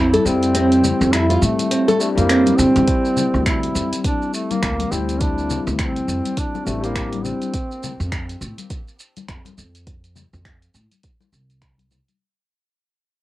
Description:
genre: organic downtempo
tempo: 103 BPM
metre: 4/4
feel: swing 59% on 16ths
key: unclear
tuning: A4 = 440 Hz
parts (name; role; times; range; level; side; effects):
- warm duduk; melody; 0.0-8.1 s; A3 to E4; -23 LUFS; right 1 dB; cassette tape, tape echo
- overdriven tine electric piano; accompaniment; 0.0-7.6 s; G3 to E5; -23 LUFS; left 4 dB; sidechain pumping, tape echo
- nylon-string guitar; arpeggios; 0.0-2.9 s; C4 to A4; -18 LUFS; right 1 dB; tape echo
- upright bass; bass; 0.0-12.0 s; A1 to A2; -23 LUFS; equal; none
- deep house drum kit; drums; 0.1-12.2 s; finger snaps, hi-hat, shaker; -27 LUFS; right 1 dB; cassette tape
- congas; percussion; 0.1-12.2 s; none; -28 LUFS; left 6 dB; none
- electronic kick drum; drums; 2.9-11.8 s; none; -24 LUFS; equal; cassette tape
room: wet booth ambience, RT60 0.2 s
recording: home recording on cassette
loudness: -17 LUFS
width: side -16 dB against mid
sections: 0.0-2.9 A section; 2.9-12.2 B section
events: kick drops out 0.5-2.9; fade-out 2.9-12.2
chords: 0.0 Fmaj7; 2.9 D7(no3); 7.5 F5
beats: | 0.55 1.13 1.71 2.29 | 2.88 3.46 4.04 4.62 | 5.21 5.79 6.37 6.95 | 7.54 8.12 8.70 9.28 | 9.87 10.45 11.03 11.61

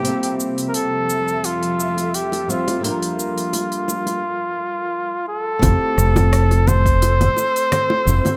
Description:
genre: sunset chillout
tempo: 86 BPM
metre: 4/4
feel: swing 53% on 16ths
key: F major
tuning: A4 = 440 Hz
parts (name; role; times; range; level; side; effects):
- trumpet with bucket mute; melody; 0.0-8.4 s; F4 to C5; -23 LUFS; equal; delay
- flamenco guitar; accompaniment; 0.0-8.4 s; G3 to E5; -28 LUFS; equal; vintage 12-bit sampler grit, delay
- ethereal airy pad; sustained chords; 0.0-8.4 s; F3 to E6; -32 LUFS; equal; ensemble chorus, built-in reverb, tremolo
- deep house drum kit; drums; 0.0-8.4 s; congas, hi-hat, rim click, shaker; -26 LUFS; equal; small room ambience
- bongos; percussion; 2.0-8.4 s; none; -28 LUFS; equal; none
- mellow fretless electric bass; bass; 5.6-8.2 s; F1; -18 LUFS; equal; tube saturation, subtle chorus
- electronic kick drum; drums; 5.6-7.0 s; none; -22 LUFS; equal; small room ambience
room: studio reverb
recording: none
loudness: -19 LUFS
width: mono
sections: 0.0-5.6 A section; 5.6-8.4 B section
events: break 4.2-5.6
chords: 0.0 Fmaj7; 2.8 Gm7; 5.6 Fmaj7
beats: | 0.05 0.74 1.44 2.14 | 2.84 3.53 4.23 4.93 | 5.63 6.33 7.02 7.72

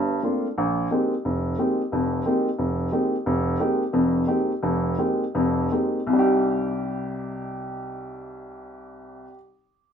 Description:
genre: jazz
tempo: 151-178 BPM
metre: 4/4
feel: swing 63% on 8ths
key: C minor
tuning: A4 = 436 Hz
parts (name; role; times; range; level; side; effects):
- warm upright piano; solo; 0.0-9.4 s; F1 to G4; -22 LUFS; equal; none
room: wet studio reverb, RT60 0.7 s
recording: minimal, uncompressed stereo recording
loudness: -21 LUFS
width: side -8 dB against mid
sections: 0.0-6.1 A section; 6.1-9.3 B section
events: slowing down 3.3-6.1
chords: 0.0 C13sus4; 0.6 Bb13sus4; 6.1 Cm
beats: 0.23 | 0.56 0.90 1.24 1.57 | 1.91 2.25 2.58 2.92 | 3.25 3.59 3.93 4.28 | 4.63 4.99 5.35 5.73 | 6.12 6.52 6.92 7.31 | 7.71 8.11 8.50 8.90

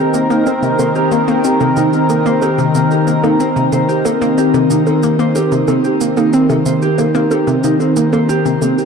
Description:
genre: ambient, sequencer-driven space music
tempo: 92 BPM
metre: 4/4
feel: straight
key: C minor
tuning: A4 = 440 Hz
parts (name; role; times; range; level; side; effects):
- sweeping resonant pad; sustained chords; 0.0-8.9 s; Eb3 to Bb4; -14 LUFS; left 1 dB; chorus, phaser, shimmer reverb
- mellow electric guitar; arpeggios; 0.0-8.9 s; C4 to C5; -18 LUFS; right 2 dB; auto-pan, shimmer reverb, analog delay
- hollow square pluck; riff; 0.1-8.7 s; C3 to C4; -18 LUFS; equal; chorus, phaser, shimmer reverb, analog delay
- cabasa and bongos; percussion; 0.1-8.9 s; none; -25 LUFS; right 1 dB; analog delay
room: wet huge ambient reverb, RT60 9.2 s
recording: dark, warm production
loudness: -11 LUFS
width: side -6 dB against mid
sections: 0.0-8.9 A section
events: none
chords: 0.0 Cm7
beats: 0.47 | 1.12 1.77 2.42 3.07 | 3.73 4.38 5.03 5.68 | 6.33 6.99 7.64 8.29

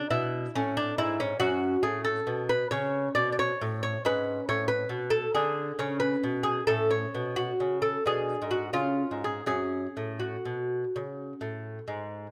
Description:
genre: classical, baroque-style dance for lute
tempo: 89 BPM (dotted quarters)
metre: 12/8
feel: uneven beats, rubato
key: F# minor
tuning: A4 = 440 Hz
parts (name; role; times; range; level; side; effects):
- lute; solo; 0.0-12.3 s; F#2 to D5; -29 LUFS; equal; none
room: light reverb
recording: close, detailed microphones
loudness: -29 LUFS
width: mono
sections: 0.0-12.3 A section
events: none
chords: 0.0 A; 1.4 F#m; 4.0 C#5/G#; 6.7 F#m/A; 8.1 G#dim/B; 8.7 C#; 9.5 F#m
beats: 0.11 0.77 | 1.41 2.06 2.73 3.39 | 4.04 4.69 5.36 6.02 | 6.69 7.36 8.05 8.74 | 9.47 10.20 10.92 11.63

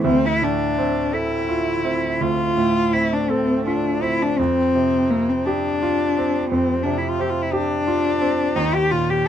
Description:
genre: classical, impressionist duo for cello and grand piano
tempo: 54-59 BPM (dotted quarters)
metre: 12/8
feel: rubato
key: unclear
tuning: A4 = 440 Hz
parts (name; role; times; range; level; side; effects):
- clear baby grand piano; accompaniment; 0.0-9.3 s; D2 to A4; -22 LUFS; right 3 dB; none
- warm cello; melody; 0.1-9.3 s; Bb3 to G4; -20 LUFS; left 2 dB; none
room: light reverb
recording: dark, warm production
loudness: -18 LUFS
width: side -9 dB against mid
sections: 0.1-9.3 A section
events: none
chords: 0.1 Dm7; 4.4 Fsus2; 8.6 Eb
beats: | 0.06 1.14 2.21 3.29 | 4.38 5.45 6.50 7.53 | 8.55

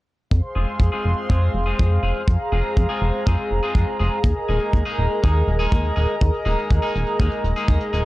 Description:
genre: italo disco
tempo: 122 BPM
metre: 4/4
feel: straight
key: F minor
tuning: A4 = 441 Hz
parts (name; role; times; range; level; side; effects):
- warm analog pad; sustained chords; 0.3-8.1 s; Ab4 to C6; -25 LUFS; equal; chorus
- chorused synth bass; bass; 0.3-8.0 s; Eb1 to F2; -21 LUFS; equal; none
- hi-hat; drums; 0.3-8.0 s; none; -49 LUFS; left 3 dB; none
- kick drum; drums; 0.3-7.8 s; none; -19 LUFS; equal; small room ambience
- clean electric guitar; stabs; 0.6-8.1 s; Ab3 to Ab4; -28 LUFS; left 2 dB; wide subtle chorus, low-pass filter, tape echo
room: studio reverb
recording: dry, gritty hardware recording, cassette tape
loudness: -18 LUFS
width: side -18 dB against mid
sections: 0.3-8.1 A section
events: filter sweep on analog synth bass 0.3-8.1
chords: 0.3 Fm; 4.2 Ebsus4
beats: | 0.31 0.80 1.29 1.79 | 2.28 2.77 3.26 3.75 | 4.25 4.74 5.23 5.72 | 6.21 6.71 7.20 7.69

